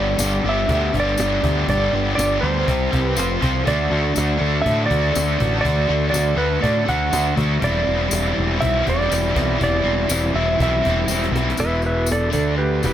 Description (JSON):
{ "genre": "garage rock duo or trio", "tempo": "121 BPM", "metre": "4/4", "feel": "straight", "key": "unclear", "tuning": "A4 = 439 Hz", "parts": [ { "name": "clean lap steel guitar", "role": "melody", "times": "0.0-12.9 s", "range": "G4 to F#5", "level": "-22 LUFS", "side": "right 2 dB", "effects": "none" }, { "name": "crunchy overdriven guitar", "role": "riff", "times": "0.0-12.9 s", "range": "E2 to C5", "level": "-21 LUFS", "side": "left 1 dB", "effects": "harmonic tremolo" }, { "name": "growling picked electric bass", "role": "bass", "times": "0.0-12.9 s", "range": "E1 to A2", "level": "-22 LUFS", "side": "equal", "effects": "overdrive" }, { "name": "cajon", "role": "drums", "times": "0.2-12.9 s", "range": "none", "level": "-27 LUFS", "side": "equal", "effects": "none" }, { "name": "tambourine", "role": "percussion", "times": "0.2-12.9 s", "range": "none", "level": "-29 LUFS", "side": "left 7 dB", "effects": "none" } ], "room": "little or no reverb", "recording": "none", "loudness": "-17 LUFS", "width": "side -11 dB against mid", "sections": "0.0-11.6 A section; 11.6-12.9 B section", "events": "drum fill 11.1-11.6; electric slide guitar solo 11.6-12.9", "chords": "0.0 G; 2.7 C5; 3.2 F5; 3.7 D; 7.6 C/E; 11.6 E5; 12.3 D5" }